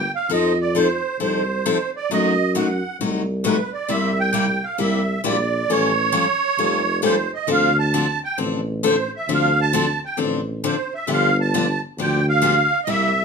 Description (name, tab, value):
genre	acoustic string swing (jazz manouche)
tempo	134 BPM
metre	4/4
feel	swing 63% on 8ths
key	unclear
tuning	A4 = 440 Hz
part	musette accordion	melody	0.0-13.2 s	B4 to A5	-21 LUFS	right 4 dB	none
part	breathy tuba	bass	0.0-13.2 s	E#1 to F#2	-23 LUFS	equal	none
part	picked steel-string acoustic guitar	accompaniment	0.3-13.1 s	C3 to A4	-22 LUFS	left 5 dB	none
room	moderate studio reverb, RT60 0.6 s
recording	minimal, uncompressed stereo recording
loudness	-18 LUFS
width	side -5 dB against mid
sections	0.0-13.2 A section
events	none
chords	0.3 F7; 2.1 F#dim7; 3.9 C7; 5.7 Aaug7; 7.5 Dm7; 11.1 G7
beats	| 0.30 0.75 1.20 1.65 | 2.10 2.55 3.00 3.45 | 3.90 4.34 4.79 5.24 | 5.69 6.14 6.59 7.04 | 7.49 7.94 8.39 8.84 | 9.28 9.73 10.18 10.63 | 11.08 11.53 11.98 12.43 | 12.88